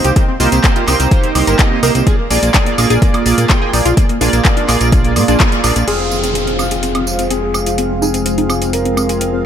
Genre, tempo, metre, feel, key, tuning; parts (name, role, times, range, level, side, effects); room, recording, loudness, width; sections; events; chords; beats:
progressive house; 126 BPM; 4/4; straight; F dorian; A4 = 440 Hz
tight sequenced synth; arpeggios; 0.0-9.4 s; Bb3 to Bb4; -20 LUFS; left 1 dB; chorus, phaser, sidechain pumping, tape echo
chorused polysynth; stabs; 0.0-9.5 s; Bb3 to G5; -17 LUFS; right 3 dB; sidechain pumping, tape echo
fat analog bass; bass; 0.0-9.5 s; F1 to Bb2; -18 LUFS; equal; sidechain pumping
deep house drum kit; drums; 0.0-9.3 s; crash cymbal, handclaps, hi-hat, tambourine, woodblock; -18 LUFS; equal; overdrive, sidechain pumping on hats, sidechain pumping on perc, sidechain pumping on cymbals
electronic kick drum; drums; 0.2-5.5 s; -13 LUFS; equal; overdrive
dark grand piano; melody; 5.9-9.5 s; F4 to Bb4; -21 LUFS; left 3 dB; sidechain pumping, ping-pong delay
filtered supersaw swell; sustained chords; 5.9-9.5 s; Ab3 to F4; -23 LUFS; left 2 dB; phaser, sidechain pumping, low-pass filter
downlifter; sound effects; 5.9-9.5 s; -24 LUFS; left 1 dB
light reverb; -11 LUFS; side -9 dB against mid
0.0-5.9 A section; 5.9-9.5 B section
band accent 5.4; filter sweep on synth arpeggio sound 5.9-9.5; filter sweep on supersaw synth 5.9-9.5
0.0 Cm7; 2.1 Bb7; 5.9 Fm
| 0.16 0.64 1.11 1.59 | 2.07 2.54 3.02 3.50 | 3.97 4.45 4.92 5.40 | 5.88 6.35 6.83 7.30 | 7.78 8.26 8.73 9.21